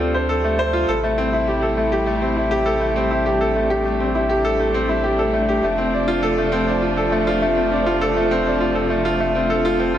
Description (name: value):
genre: piano and strings electronica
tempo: 101 BPM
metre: 4/4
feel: straight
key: unclear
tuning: A4 = 439 Hz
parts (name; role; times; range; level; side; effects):
- rich studio string section; sustained chords; 0.0-10.0 s; C3 to E4; -24 LUFS; equal; none
- bright concert grand piano; riff; 0.0-10.0 s; A3 to C5; -18 LUFS; equal; ping-pong delay
- warm sub bass; bass; 0.0-10.0 s; F1 to D2; -28 LUFS; equal; tube saturation
room: moderate echo chamber reverb, RT60 1.4 s, small room ambience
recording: none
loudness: -17 LUFS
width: side -10 dB against mid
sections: 0.0-10.0 A section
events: fade-in on string section 0.0-10.0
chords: 0.0 Dm7; 0.9 Am7; 5.6 F6